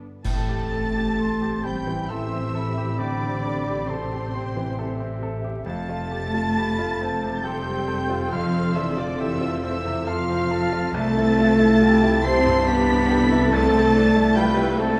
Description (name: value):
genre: cinematic, emotional film score for orchestra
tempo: 63-71 BPM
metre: 3/4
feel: rubato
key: A minor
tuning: A4 = 440 Hz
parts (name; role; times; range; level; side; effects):
- bright grand piano; accompaniment; 0.0-15.0 s; C2 to A4; -32 LUFS; equal; none
- warm oboe; second line; 0.2-14.8 s; C5 to C6; -35 LUFS; equal; none
- dark French horn section; sustained chords; 0.2-14.8 s; C4 to C5; -30 LUFS; equal; none
- rich symphonic double bass section; bass; 0.2-15.0 s; F1 to C2; -31 LUFS; equal; none
- clash cymbals and concert bass drum; percussion; 0.2-2.0 s; none; -34 LUFS; equal; none
- warm symphonic violin section; melody; 0.3-14.8 s; C6 to C7; -36 LUFS; equal; none
- warm symphonic violin section; second line; 0.3-14.8 s; C5 to C6; -36 LUFS; equal; none
- warm symphonic viola section; accompaniment; 0.3-15.0 s; A3 to B4; -31 LUFS; equal; none
- rich symphonic cello section; bass; 0.3-14.8 s; C3 to C4; -27 LUFS; equal; none
- silver concert flute; second line; 1.2-15.0 s; E5 to C6; -33 LUFS; equal; none
room: wet scoring stage reverb, RT60 1.6 s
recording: dark, warm production, vinyl crackle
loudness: -22 LUFS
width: mono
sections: 0.3-15.0 A section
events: band accent 0.3-1.2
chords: 0.3 Am7; 5.7 Fmaj7; 10.9 C6